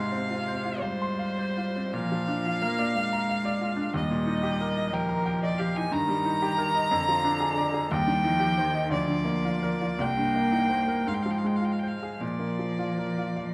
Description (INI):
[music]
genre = classical, slow romantic movement for piano trio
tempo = 51-62 BPM (dotted quarters)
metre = 6/8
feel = rubato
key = Eb major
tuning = A4 = 440 Hz
[part]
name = rich violin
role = melody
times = 0.0-13.5 s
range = Bb4 to Bb5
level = -32 LUFS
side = equal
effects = none
[part]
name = rich cello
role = second line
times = 0.0-13.5 s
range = C3 to Bb3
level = -33 LUFS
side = equal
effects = none
[part]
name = bright baby grand piano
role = accompaniment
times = 0.0-13.5 s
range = C2 to C6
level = -32 LUFS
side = equal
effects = none
[sound]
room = wet large studio reverb, RT60 1.2 s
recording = none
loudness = -27 LUFS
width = mono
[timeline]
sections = 0.0-13.5 A section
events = none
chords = 0.0 Fm/Ab; 1.9 Bb; 3.9 Eb; 5.9 Eb/G; 6.9 Ddim/F; 7.9 Cm/Eb; 8.9 Bb/D; 10.0 Cm7; 11.1 Fm/Ab; 12.2 Bb